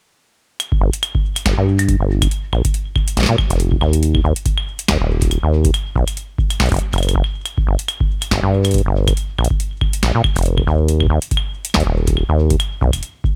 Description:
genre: IDM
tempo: 140 BPM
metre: 4/4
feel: swing 56% on 16ths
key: unclear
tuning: A4 = 440 Hz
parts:
  - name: booming analog drum machine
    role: drums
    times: 0.6-13.1 s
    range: claves, hi-hat, snare drum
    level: -24 LUFS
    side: equal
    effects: delay
  - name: electronic kick drum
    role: drums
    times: 0.7-13.3 s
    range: none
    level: -22 LUFS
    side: equal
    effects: none
  - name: deep acid bass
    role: bass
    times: 0.8-12.9 s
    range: Eb1 to Bb2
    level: -17 LUFS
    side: equal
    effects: tube saturation
room: little or no reverb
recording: none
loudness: -17 LUFS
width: mono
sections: 0.6-13.4 A section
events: none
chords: none

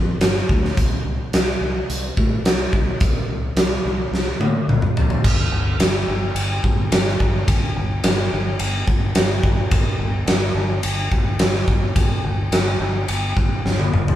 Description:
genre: classic rock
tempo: 107 BPM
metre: 4/4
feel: straight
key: unclear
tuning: A4 = 440 Hz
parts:
  - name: growling fingered electric bass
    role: bass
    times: 0.0-14.2 s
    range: G1 to A2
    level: -23 LUFS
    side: equal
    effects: overdrive
  - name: big rock drum kit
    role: drums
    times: 0.2-14.2 s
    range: crash cymbal, hi-hat, kick drum, ride cymbal, snare drum, toms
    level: -18 LUFS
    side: equal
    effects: none
room: moderate large studio reverb, RT60 1.1 s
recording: band playing live in one room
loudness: -17 LUFS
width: side -12 dB against mid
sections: 0.0-5.2 A section; 5.2-14.2 B section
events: drum fill 4.1-5.2, 13.6-14.2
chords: none

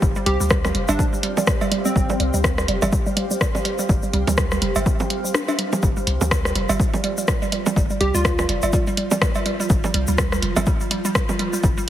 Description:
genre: minimal techno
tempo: 124 BPM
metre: 4/4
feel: swing 58% on 16ths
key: unclear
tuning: A4 = 440 Hz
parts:
  - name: hollow square pluck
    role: riff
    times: 0.0-11.8 s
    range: G3 to D4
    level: -25 LUFS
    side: right 3 dB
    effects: chorus, sidechain pumping, dub echo
  - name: punchy sub bass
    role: bass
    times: 0.0-11.7 s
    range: F1 to D2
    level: -24 LUFS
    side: left 1 dB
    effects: sidechain pumping
  - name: electronic kick drum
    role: drums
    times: 0.0-11.7 s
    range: none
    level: -21 LUFS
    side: left 1 dB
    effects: none
  - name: egg shaker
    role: percussion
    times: 0.0-11.9 s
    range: none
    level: -32 LUFS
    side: left 3 dB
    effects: none
  - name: granular cloud pad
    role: texture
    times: 0.0-5.8 s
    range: G4 to F5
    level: -30 LUFS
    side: equal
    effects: built-in reverb, sidechain pumping
  - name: plucky unison lead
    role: melody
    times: 0.3-2.5, 8.0-8.8 s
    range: C4 to G4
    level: -26 LUFS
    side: equal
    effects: dub echo
  - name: punchy analog drum machine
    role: drums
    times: 0.3-11.5 s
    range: hi-hat, rim click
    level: -24 LUFS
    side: left 1 dB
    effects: none
  - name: bongos and cowbell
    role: percussion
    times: 0.6-11.4 s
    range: none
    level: -27 LUFS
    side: right 5 dB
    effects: dub echo
  - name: swarming drone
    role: texture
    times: 6.5-11.9 s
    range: F3 to F4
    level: -32 LUFS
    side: right 1 dB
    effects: built-in reverb, sidechain pumping
room: light reverb, digital ambience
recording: heavily compressed radio sound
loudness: -18 LUFS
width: side -12 dB against mid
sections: 0.0-5.8 A section; 5.8-11.9 B section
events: drop 5.8-11.9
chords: 0.0 G5

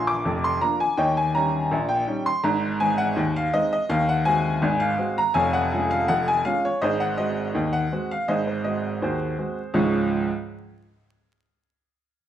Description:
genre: ragtime piano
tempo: 82 BPM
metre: 2/4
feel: straight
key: Db major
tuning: A4 = 440 Hz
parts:
  - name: clear upright piano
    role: solo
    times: 0.0-10.3 s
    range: F1 to D6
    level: -21 LUFS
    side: equal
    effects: none
room: moderate large studio reverb, RT60 1.2 s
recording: band playing live in one room, vinyl crackle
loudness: -21 LUFS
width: side -10 dB against mid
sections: 0.0-9.8 A section; 9.8-11.2 B section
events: none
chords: 0.0 Bb; 1.0 Eb7; 2.4 Ab; 5.4 Db/F; 6.8 Ab7; 9.8 Db

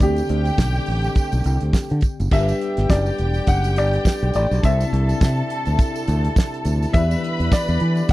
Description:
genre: disco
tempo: 104 BPM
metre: 4/4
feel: swing 56% on 16ths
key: G major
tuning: A4 = 442 Hz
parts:
  - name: clear concert grand piano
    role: melody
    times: 0.0-8.1 s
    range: G4 to F#5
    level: -25 LUFS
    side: left 1 dB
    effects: none
  - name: clear studio string section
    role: second line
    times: 0.0-8.1 s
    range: G4 to B5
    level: -29 LUFS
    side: equal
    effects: none
  - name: tine electric piano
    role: accompaniment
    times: 0.0-8.1 s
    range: C3 to D5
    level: -28 LUFS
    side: left 3 dB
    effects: medium stereo tremolo, tube saturation
  - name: mellow French horn section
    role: sustained chords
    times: 0.0-8.1 s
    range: C3 to G4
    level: -30 LUFS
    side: right 1 dB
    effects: none
  - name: fingered electric bass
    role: bass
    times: 0.0-8.1 s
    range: E1 to E3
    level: -20 LUFS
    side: equal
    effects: none
  - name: damped 70s drum kit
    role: drums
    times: 0.0-8.1 s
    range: crash cymbal, hi-hat, kick drum, snare drum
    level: -17 LUFS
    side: equal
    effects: none
  - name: tambourine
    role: percussion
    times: 0.0-8.1 s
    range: none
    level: -41 LUFS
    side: right 9 dB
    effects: none
room: little or no reverb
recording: dry, close 1970s-style studio recording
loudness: -17 LUFS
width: side -17 dB against mid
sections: 0.0-2.3 A section; 2.3-8.1 B section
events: none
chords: 0.0 D7sus4; 2.3 Gmaj7; 4.6 Cadd9; 6.9 Em7

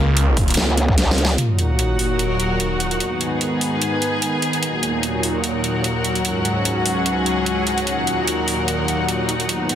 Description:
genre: heavy wobble dubstep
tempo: 148 BPM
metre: 4/4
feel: swing 54% on 16ths, half-time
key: Eb minor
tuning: A4 = 440 Hz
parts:
  - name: supersaw pad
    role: sustained chords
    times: 0.0-9.8 s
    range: Db2 to F4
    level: -22 LUFS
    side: equal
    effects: sidechain pumping, low-pass filter
  - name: snarling distorted saw bass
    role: bass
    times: 0.0-0.6 s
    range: Db2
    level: -16 LUFS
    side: equal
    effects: distortion, overdrive
  - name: dubstep drum kit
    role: drums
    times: 0.2-9.8 s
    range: hi-hat, snare drum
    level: -23 LUFS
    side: right 1 dB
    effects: small room ambience
  - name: electronic kick drum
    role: drums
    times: 0.4-1.0 s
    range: none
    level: -20 LUFS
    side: equal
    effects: small room ambience
  - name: growl bass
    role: bass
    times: 0.6-1.4 s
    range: Db2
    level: -18 LUFS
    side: equal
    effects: chorus, overdrive
  - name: sub drop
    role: sound effects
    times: 1.4-3.0 s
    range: none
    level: -22 LUFS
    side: equal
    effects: none
  - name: rich symphonic string section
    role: texture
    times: 1.4-9.8 s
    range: Db4 to Ab5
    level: -23 LUFS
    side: left 2 dB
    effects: sidechain pumping
room: moderate digital room reverb, RT60 1.1 s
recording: dense, heavily limited modern master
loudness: -17 LUFS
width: side -10 dB against mid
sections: 0.0-1.4 A section; 1.4-9.8 B section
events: drop 0.0-1.4; kick drops out 1.0-1.4; drum fill 1.0-1.4; impact 1.4-3.0; filter sweep on supersaw synth 1.4-9.8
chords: 0.0 Db; 1.4 Ebm; 3.0 Abm; 4.6 Ebm; 6.2 Dbsus4; 7.9 Ebm

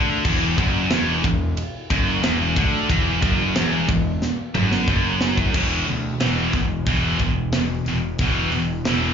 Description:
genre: heavy metal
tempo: 91 BPM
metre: 4/4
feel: straight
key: unclear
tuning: A4 = 440 Hz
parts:
  - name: scooped high-gain guitar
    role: riff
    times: 0.0-9.1 s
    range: E2 to E3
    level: -21 LUFS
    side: equal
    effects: distortion
  - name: fuzz picked electric bass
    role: bass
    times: 0.0-9.1 s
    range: E1 to D2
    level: -25 LUFS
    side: equal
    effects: overdrive
  - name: tight metal drum kit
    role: drums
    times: 0.2-9.0 s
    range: crash cymbal, hi-hat, kick drum, ride cymbal, snare drum, toms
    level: -24 LUFS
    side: equal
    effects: none
room: little or no reverb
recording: live gig heard through the venue's PA, club reverb, nothing above 7.4 kHz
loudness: -18 LUFS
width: side -7 dB against mid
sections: 0.0-5.5 A section; 5.5-9.1 B section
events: drum fill 4.2-5.5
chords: 0.0 Esus2; 5.5 E5

